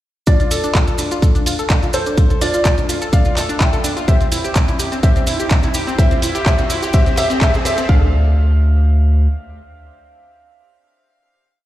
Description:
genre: progressive house.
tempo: 126 BPM.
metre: 4/4.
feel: straight.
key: D minor.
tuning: A4 = 442 Hz.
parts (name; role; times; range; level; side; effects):
bright baby grand piano; melody; 0.3-11.7 s; F4 to G5; -24 LUFS; left 1 dB; sidechain pumping, low-pass filter, tape echo.
glassy wavetable pluck; second line; 0.3-11.7 s; C5 to G5; -28 LUFS; equal; none.
analog pluck; arpeggios; 0.3-8.1 s; C4 to A4; -23 LUFS; equal; chorus, sidechain pumping, tape echo.
electronic kick drum; drums; 0.3-8.0 s; none; -14 LUFS; equal; none.
pop drum kit; drums; 0.3-7.9 s; handclaps, hi-hat; -24 LUFS; equal; high-pass filter on hats, high-pass filter on snare.
maracas; percussion; 0.3-7.9 s; none; -29 LUFS; right 2 dB; none.
riser; sound effects; 1.0-7.9 s; none; -30 LUFS; right 2 dB; none.
round analog bass; bass; 0.5-9.3 s; C2 to D2; -16 LUFS; equal; sidechain pumping, high-pass filter.
room: light reverb.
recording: played on a big sound system in a bare room, large studio reverb.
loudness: -13 LUFS.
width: side -14 dB against mid.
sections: 0.3-7.9 build; 7.9-11.7 final chord.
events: build-up 0.3-7.9; filter sweep on grand piano 0.3-7.9; riser 1.0-7.9.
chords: 0.3 Dm; 4.1 C; 7.9 Dm.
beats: | 0.27 0.75 1.22 1.70 | 2.18 2.65 3.13 3.60 | 4.08 4.56 5.03 5.51 | 5.99 6.46 6.94 7.42 | 7.89 8.37 8.84 9.32 | 9.80 10.27 10.75 11.22.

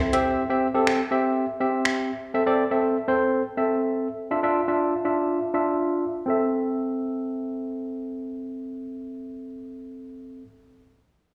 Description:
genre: dance-pop.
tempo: 122 BPM.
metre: 4/4.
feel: straight.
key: A minor.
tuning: A4 = 440 Hz.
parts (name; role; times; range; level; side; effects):
barky tine electric piano; accompaniment; 0.0-10.5 s; C4 to E5; -26 LUFS; equal; low-pass filter.
smooth R&B drum kit; drums; 0.1-2.0 s; finger snaps, hi-hat; -30 LUFS; equal; none.
room: moderate digital room reverb, RT60 1.1 s, digital ambience.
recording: played on a big sound system in a bare room, large studio reverb, small room ambience.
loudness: -25 LUFS.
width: mono.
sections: 0.0-6.3 A section; 6.3-10.2 B section.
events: filter sweep on tine electric piano 0.0-6.3.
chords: 0.1 C; 2.3 Am/C; 4.3 Dmadd9; 6.3 Am.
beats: | 0.38 0.87 1.36 1.85 | 2.34 2.83 3.33 3.82 | 4.31 4.80 5.29 5.79 | 6.28 6.77 7.26 7.75 | 8.24 8.74 9.23 9.72.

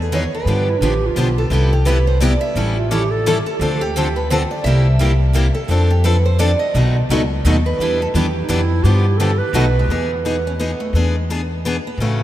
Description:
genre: acoustic string swing (jazz manouche).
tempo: 172 BPM.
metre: 3/4.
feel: swing 60% on 8ths.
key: C major.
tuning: A4 = 441 Hz.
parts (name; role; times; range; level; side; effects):
picked old ladder-braced acoustic guitar; melody; 0.0-12.2 s; Ab3 to E5; -23 LUFS; right 2 dB; diffuse ambient delay.
upright bass; bass; 0.0-12.2 s; A1 to G2; -17 LUFS; equal; none.
picked steel-string acoustic guitar; accompaniment; 0.1-12.2 s; B2 to A4; -22 LUFS; left 4 dB; none.
picked steel-string acoustic guitar; accompaniment; 0.1-9.7 s; B2 to B4; -24 LUFS; right 3 dB; none.
breathy clarinet; second line; 0.7-3.4, 8.4-9.9 s; D4 to B4; -26 LUFS; right 4 dB; diffuse ambient delay.
room: moderate cathedral reverb, RT60 6.1 s.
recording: dreamy mix soaked in reverb.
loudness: -15 LUFS.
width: side -13 dB against mid.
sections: 0.0-1.5 A section; 1.5-9.9 B section; 9.9-12.2 A section.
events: none.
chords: 0.5 G7; 1.5 Cmaj7; 2.6 A7; 3.6 Dm7; 4.7 C7; 5.7 F6; 6.7 B7; 7.8 Em7; 8.8 G7; 9.5 B7; 9.9 Emaj7; 10.9 E7.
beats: 0.11 | 0.46 0.81 1.16 | 1.51 1.86 2.21 | 2.56 2.91 3.26 | 3.60 3.95 4.30 | 4.65 5.00 5.35 | 5.70 6.05 6.39 | 6.74 7.09 7.44 | 7.79 8.14 8.49 | 8.84 9.19 9.54 | 9.88 10.23 10.58 | 10.93 11.28 11.63 | 11.98.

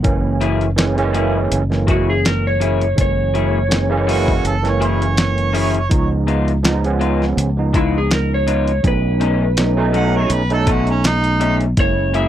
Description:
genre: straight-eighth soul blues.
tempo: 82 BPM.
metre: 4/4.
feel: swing 54% on 16ths.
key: F# mixolydian.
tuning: A4 = 435 Hz.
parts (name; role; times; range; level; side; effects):
overdriven tine electric piano; accompaniment; 0.0-12.3 s; E3 to E4; -21 LUFS; right 4 dB; ensemble chorus.
fingered electric bass; bass; 0.0-12.3 s; F#1 to C#2; -18 LUFS; equal; none.
dusty soul sampler-style drum kit; drums; 0.0-12.3 s; hi-hat, kick drum, snare drum; -19 LUFS; equal; overdrive.
electric guitar through a small old amp; stabs; 0.4-12.3 s; B2 to G#4; -22 LUFS; left 6 dB; analog chorus.
electric slide guitar; melody; 1.9-12.3 s; E4 to E5; -21 LUFS; equal; none.
mellow harmonica; second line; 4.1-11.6 s; C#4 to F#5; -22 LUFS; right 4 dB; overdrive.
room: little or no reverb.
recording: dry, close 1970s-style studio recording.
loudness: -14 LUFS.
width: side -11 dB against mid.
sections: 0.0-12.3 A section.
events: none.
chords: 0.1 F#9; 5.9 C#9; 8.8 B9; 11.8 F#9.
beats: | 0.05 0.78 1.52 2.25 | 2.98 3.71 4.45 5.18 | 5.91 6.65 7.38 8.11 | 8.85 9.58 10.31 11.05 | 11.78.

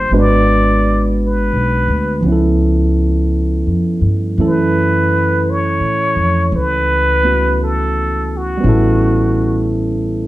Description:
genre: jazz ballad.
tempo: 56 BPM.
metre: 4/4.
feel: swing 69% on 8ths.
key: unclear.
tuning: A4 = 440 Hz.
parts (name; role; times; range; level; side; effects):
trumpet with plunger mute; melody; 0.0-9.7 s; F#4 to D5; -17 LUFS; equal; none.
barky tine electric piano; accompaniment; 0.0-10.3 s; E3 to B4; -17 LUFS; right 2 dB; overdrive.
upright bass; bass; 0.0-10.3 s; G#1 to A2; -16 LUFS; left 1 dB; none.
room: moderate large studio reverb, RT60 0.8 s.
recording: dark, warm production.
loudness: -12 LUFS.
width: side -16 dB against mid.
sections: 0.0-10.3 A section.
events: none.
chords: 0.1 G#m7b5; 2.2 C#7alt; 4.4 F#m7; 8.6 A7.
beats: | 0.11 1.18 2.25 3.32 | 4.39 5.46 6.52 7.58 | 8.64 9.70.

